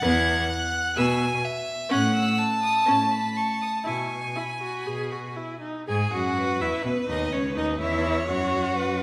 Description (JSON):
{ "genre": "quick classical-period movement for string quartet", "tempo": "118-128 BPM", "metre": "4/4", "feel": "rubato", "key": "E major", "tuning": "A4 = 440 Hz", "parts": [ { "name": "rich violin", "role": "melody", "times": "0.0-9.0 s", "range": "B4 to G#6", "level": "-32 LUFS", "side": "equal", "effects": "none" }, { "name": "rich violin", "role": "second line", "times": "0.0-9.0 s", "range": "G#4 to A5", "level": "-30 LUFS", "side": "equal", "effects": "none" }, { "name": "warm viola", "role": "accompaniment", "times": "0.0-9.0 s", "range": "B3 to G#4", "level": "-31 LUFS", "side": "equal", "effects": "none" }, { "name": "clear cello", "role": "bass", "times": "0.0-9.0 s", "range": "C#2 to B2", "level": "-31 LUFS", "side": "equal", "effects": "none" } ], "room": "wet scoring stage reverb, RT60 1.6 s", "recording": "none", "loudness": "-25 LUFS", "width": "mono", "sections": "0.0-5.9 A section; 5.9-9.0 B section", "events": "none", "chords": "0.0 E; 1.9 F#m/A; 3.9 E/B; 4.9 B; 5.9 E; 7.8 F#5/E" }